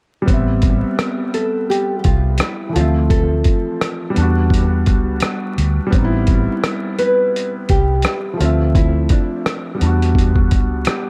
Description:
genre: lo-fi hip hop.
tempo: 85 BPM.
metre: 4/4.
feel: swing 61% on 16ths.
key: A minor.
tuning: A4 = 440 Hz.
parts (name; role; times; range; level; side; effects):
felt-muted upright piano; accompaniment; 0.2-11.1 s; E3 to E5; -23 LUFS; equal; cassette tape, dub echo.
vintage muted fingered electric bass; bass; 0.3-10.9 s; A1 to E2; -19 LUFS; equal; none.
dusty soul sampler-style drum kit; drums; 0.3-11.1 s; hi-hat, kick drum, rim click; -20 LUFS; equal; none.
nylon-string guitar; melody; 1.3-10.1 s; D4 to B4; -23 LUFS; equal; dub echo.
room: light reverb.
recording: echo-heavy mix, vinyl crackle.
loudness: -17 LUFS.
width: mono.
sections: 0.3-11.1 A section.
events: none.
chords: 0.3 Am7; 2.7 Dm7; 4.2 Em7; 5.9 Am7; 8.4 Dm7; 9.8 Em7.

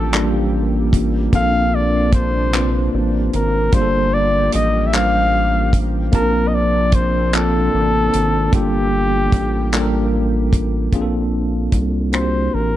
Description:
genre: slow six-eight R&B.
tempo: 50 BPM (dotted quarters).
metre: 6/8.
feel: straight.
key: unclear.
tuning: A4 = 439 Hz.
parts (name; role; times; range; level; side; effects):
warm flugelhorn; melody; 0.0-12.8 s; G4 to F5; -20 LUFS; left 2 dB; none.
tine electric piano; accompaniment; 0.0-12.8 s; G3 to A5; -20 LUFS; right 1 dB; medium stereo tremolo.
lush unison pad; sustained chords; 0.0-10.9 s; C3 to G4; -29 LUFS; right 1 dB; chorus.
rubbery square bass; bass; 0.0-12.8 s; G1 to C2; -20 LUFS; equal; none.
damped 70s drum kit; drums; 0.1-12.3 s; finger snaps, handclaps, hi-hat, kick drum; -17 LUFS; equal; none.
room: light reverb, small room ambience.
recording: dark, warm production.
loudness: -15 LUFS.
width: side -13 dB against mid.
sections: 0.0-10.9 A section; 10.9-12.8 B section.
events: none.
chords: 0.0 Gm9; 1.3 Bbmaj9; 3.7 Gm9; 6.1 Bbmaj9; 8.5 Gm9; 10.9 Bbmaj9.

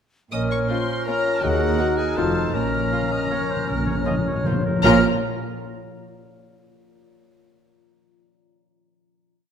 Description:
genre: classical, orchestral ballroom waltz.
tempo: 160 BPM.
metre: 3/4.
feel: uneven beats, rubato.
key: Bb minor.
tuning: A4 = 440 Hz.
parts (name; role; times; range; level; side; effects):
warm chamber violin section; melody; 0.3-5.0 s; Gb5 to Eb6; -30 LUFS; left 4 dB; none.
bright silver concert flute; second line; 0.3-5.0 s; F6 to Gb6; -30 LUFS; left 1 dB; none.
warm clarinet; second line; 0.3-5.0 s; Gb4 to Eb5; -32 LUFS; left 2 dB; none.
warm oboe; second line; 0.3-5.0 s; Bb4 to F5; -32 LUFS; right 1 dB; none.
warm bassoon; accompaniment; 0.3-5.0 s; Db4 to Eb4; -28 LUFS; right 1 dB; none.
mellow French horn section; sustained chords; 0.3-5.0 s; F3 to Bb4; -28 LUFS; left 3 dB; none.
concert harp; arpeggios; 0.3-6.0 s; Bb2 to F5; -30 LUFS; left 6 dB; none.
rich symphonic cello section; bass; 0.3-5.0 s; Eb2 to Bb2; -29 LUFS; right 4 dB; none.
rich symphonic double bass section; bass; 0.3-5.0 s; F1 to Eb2; -28 LUFS; right 4 dB; none.
warm symphonic violin section; second line; 0.7-5.0 s; Db4 to Gb4; -30 LUFS; left 2 dB; none.
dark symphonic viola section; accompaniment; 0.7-5.0 s; F3 to Eb4; -27 LUFS; right 3 dB; none.
timpani; percussion; 2.5-5.0 s; Bb2; -26 LUFS; equal; none.
room: moderate concert hall reverb, RT60 1.9 s.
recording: none.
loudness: -19 LUFS.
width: side -8 dB against mid.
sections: 0.3-4.8 A section; 4.8-6.0 final chord.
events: timpani fill 2.5-4.8.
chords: 0.3 Bbm; 1.4 Ebm; 2.2 F7; 2.5 Bbm.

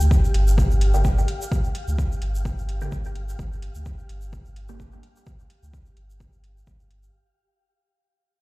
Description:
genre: dub techno.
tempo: 128 BPM.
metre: 4/4.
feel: swing 55% on 16ths.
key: G minor.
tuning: A4 = 441 Hz.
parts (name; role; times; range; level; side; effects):
pure sine sub bass; bass; 0.0-7.1 s; G1 to D2; -22 LUFS; equal; sidechain pumping.
egg shaker; percussion; 0.0-7.1 s; none; -40 LUFS; right 1 dB; none.
wind-like tuned noise texture; texture; 0.0-7.2 s; G4 to F5; -36 LUFS; left 2 dB; built-in reverb, sidechain pumping.
electronic kick drum; drums; 0.1-6.8 s; none; -22 LUFS; equal; overdrive, studio ambience.
electronic hi-hat; drums; 0.3-7.0 s; none; -38 LUFS; right 1 dB; overdrive, studio ambience.
filtered dub chord stab; stabs; 0.9-6.5 s; D3 to G4; -34 LUFS; equal; phaser, sidechain pumping, dub echo.
room: digital ambience.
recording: played on a big sound system in a bare room, large studio reverb.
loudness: -20 LUFS.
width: side -22 dB against mid.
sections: 0.0-7.1 A section.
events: fade-out 0.0-7.1.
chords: 0.0 Gm.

